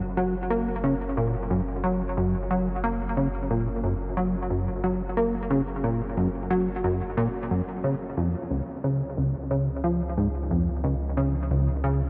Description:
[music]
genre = ambient, sequencer-driven space music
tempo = 90 BPM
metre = 4/4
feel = straight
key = unclear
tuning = A4 = 440 Hz
[part]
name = warm sub bass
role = bass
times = 0.0-12.1 s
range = Gb1 to Db2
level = -35 LUFS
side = equal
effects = none
[part]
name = plucky analog bass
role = riff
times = 0.2-12.0 s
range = Db2 to Bb3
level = -27 LUFS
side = equal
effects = lush chorus, delay
[sound]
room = wet huge ambient reverb, RT60 7.7 s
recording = in a vast, echoing space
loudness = -27 LUFS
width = mono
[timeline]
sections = 0.0-12.1 A section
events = none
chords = 0.0 Gb; 8.2 Db

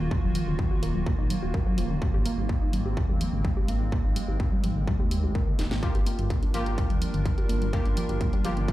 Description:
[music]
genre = melodic techno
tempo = 126 BPM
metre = 4/4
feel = straight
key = unclear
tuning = A4 = 440 Hz
[part]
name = evolving wavetable pad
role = sustained chords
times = 0.0-8.7 s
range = Eb3 to Bb4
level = -34 LUFS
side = right 1 dB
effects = chorus, built-in reverb, sidechain pumping
[part]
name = tight sequenced synth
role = arpeggios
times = 0.0-8.7 s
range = D3 to Bb4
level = -32 LUFS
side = equal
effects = chorus, sidechain pumping, tape echo
[part]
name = swelling detuned saw bass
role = bass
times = 0.0-8.7 s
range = Eb1 to Eb2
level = -29 LUFS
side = equal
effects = tube saturation, sidechain pumping
[part]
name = electronic kick drum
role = drums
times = 0.1-8.7 s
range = none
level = -26 LUFS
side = equal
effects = distortion, overdrive
[part]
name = techno drum kit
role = drums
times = 0.3-8.7 s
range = hi-hat, snare drum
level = -39 LUFS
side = equal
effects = overdrive, sidechain pumping on hats
[part]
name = synth brass stab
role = stabs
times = 5.8-8.7 s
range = Bb3 to G4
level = -34 LUFS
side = equal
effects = chorus, sidechain pumping, tape echo
[sound]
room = light reverb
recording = played on a big sound system in a bare room, large studio reverb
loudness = -24 LUFS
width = side -15 dB against mid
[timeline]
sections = 0.0-8.7 A section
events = drum fill 5.6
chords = 0.0 Ebmadd9; 2.0 Abadd9; 5.8 Gm7

